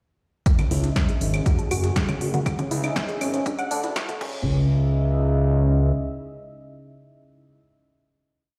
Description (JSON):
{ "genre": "melodic techno", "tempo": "120 BPM", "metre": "4/4", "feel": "straight", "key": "C# minor", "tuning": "A4 = 438 Hz", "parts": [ { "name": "dark analog pad", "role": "sustained chords", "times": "0.8-7.6 s", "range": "A3 to E5", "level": "-33 LUFS", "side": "equal", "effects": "chorus, phaser, sidechain pumping" }, { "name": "breakbeat sampler-style drum kit", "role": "drums", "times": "0.5-4.1 s", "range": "hi-hat, snare drum, tambourine", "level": "-42 LUFS", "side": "equal", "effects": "sidechain pumping on perc, high-pass filter on perc, high-pass filter on snare, sidechain pumping on hats, high-pass filter on hats, high-pass filter on room" }, { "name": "electronic kick drum", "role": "drums", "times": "0.5-4.3 s", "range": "none", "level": "-25 LUFS", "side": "equal", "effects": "none" }, { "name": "techno drum kit", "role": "drums", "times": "0.5-4.3 s", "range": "claves, congas, crash cymbal, hi-hat, snare drum", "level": "-32 LUFS", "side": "equal", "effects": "sidechain pumping on hats, sidechain pumping on perc, sidechain pumping on cymbals" }, { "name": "tight sequenced synth", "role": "arpeggios", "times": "0.6-4.7 s", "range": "A3 to A5", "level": "-32 LUFS", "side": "equal", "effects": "chorus, sidechain pumping, digital delay" }, { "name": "fat analog bass", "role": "bass", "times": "0.7-5.9 s", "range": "F#1 to D2", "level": "-24 LUFS", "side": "equal", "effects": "sidechain pumping" } ], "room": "light reverb", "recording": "played on a big sound system in a bare room, stone room reverb, high-pass filter", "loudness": "-23 LUFS", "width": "mono", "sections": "0.5-4.5 build; 4.5-8.5 final hit", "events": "build-up 0.5-4.5; filter sweep on synth arpeggio sound 0.5-4.5; filter sweep 0.5-4.5", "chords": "0.5 C#madd9; 1.5 F#madd9; 2.5 C#madd9; 3.5 D; 4.2 C#madd9", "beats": "| 0.46 0.96 1.46 1.96 | 2.46 2.96 3.46 3.96 | 4.46 4.96 5.46 5.96 | 6.46 6.96 7.46" }